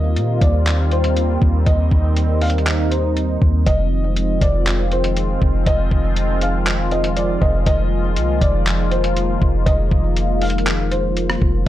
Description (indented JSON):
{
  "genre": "hip hop, atmospheric cloud-rap",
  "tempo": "120 BPM",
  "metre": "4/4",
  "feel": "half-time",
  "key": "F dorian",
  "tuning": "A4 = 440 Hz",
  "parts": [
    { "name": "felt-muted upright piano", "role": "melody", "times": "0.0-11.6 s", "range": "C5 to F5", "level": "-24 LUFS", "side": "equal", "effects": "low-pass filter, digital delay" },
    { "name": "sweeping resonant pad", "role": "sustained chords", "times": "0.0-11.7 s", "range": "Eb3 to F4", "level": "-22 LUFS", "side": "equal", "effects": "chorus, sidechain pumping" },
    { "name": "warm 808-style bass", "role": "bass", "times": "0.0-11.7 s", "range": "F1 to Bb2", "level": "-19 LUFS", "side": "equal", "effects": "none" },
    { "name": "lo-fi sampler-style drum kit", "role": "drums", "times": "0.2-11.5 s", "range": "handclaps, hi-hat, kick drum, rim click", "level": "-20 LUFS", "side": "equal", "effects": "none" }
  ],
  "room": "little or no reverb",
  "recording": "none",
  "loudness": "-15 LUFS",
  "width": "side -13 dB against mid",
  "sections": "0.0-3.7 A section; 3.7-11.7 B section",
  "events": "none",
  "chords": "0.0 Eb69; 3.7 Fm7"
}